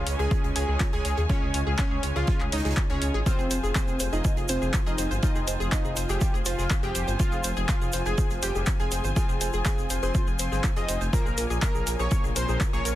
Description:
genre	melodic techno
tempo	122 BPM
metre	4/4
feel	straight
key	F minor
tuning	A4 = 441 Hz
part	fat analog lead	melody	0.0-13.0 s	C4 to Eb5	-33 LUFS	right 1 dB	chorus, sidechain pumping, dub echo
part	glassy wavetable pluck	second line	0.0-13.0 s	C5 to Eb6	-39 LUFS	right 2 dB	chorus, sidechain pumping, digital delay
part	warm studio string section	sustained chords	0.0-13.0 s	F4 to Ab5	-37 LUFS	left 1 dB	sidechain pumping
part	sync-sweep polysynth	stabs	0.0-13.0 s	Bb2 to F4	-36 LUFS	left 1 dB	chorus, sidechain pumping, digital delay
part	dark detuned saw bass	bass	0.0-12.9 s	F1 to Eb2	-29 LUFS	equal	sidechain pumping
part	analog pluck	arpeggios	0.1-12.9 s	F4 to Ab5	-35 LUFS	equal	chorus, sidechain pumping, digital delay
part	punchy analog drum machine	drums	0.1-13.0 s	handclaps, hi-hat	-32 LUFS	left 2 dB	overdrive
part	warm soul drum kit	drums	0.1-13.0 s	hi-hat, snare drum	-43 LUFS	right 6 dB	none
part	electronic kick drum	drums	0.3-12.7 s	none	-26 LUFS	equal	overdrive
part	tube shaker	percussion	3.3-13.0 s	none	-37 LUFS	right 3 dB	none
room	little or no reverb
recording	dense, heavily limited modern master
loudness	-23 LUFS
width	side -14 dB against mid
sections	0.0-13.0 A section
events	none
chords	0.0 Db; 3.3 Fm; 11.1 Bbm7

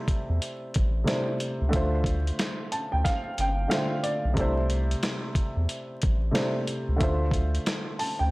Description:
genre	hip hop, boom-bap hip-hop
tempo	91 BPM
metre	4/4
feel	swing 63% on 16ths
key	D minor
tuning	A4 = 441 Hz
part	dark baby grand piano	accompaniment	0.0-8.3 s	C3 to A5	-29 LUFS	equal	cassette tape, high-pass filter, low-pass filter
part	dusty soul sampler-style drum kit	drums	0.1-8.2 s	hi-hat, kick drum, snare drum	-29 LUFS	equal	none
part	soft dub sub bass	bass	0.3-8.3 s	G1 to E2	-26 LUFS	equal	none
room	little or no reverb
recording	dry, gritty hardware recording, vinyl crackle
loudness	-24 LUFS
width	side -22 dB against mid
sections	0.0-8.3 A section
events	none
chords	0.0 C6; 1.7 Dm7; 4.4 C6; 7.0 Dm7

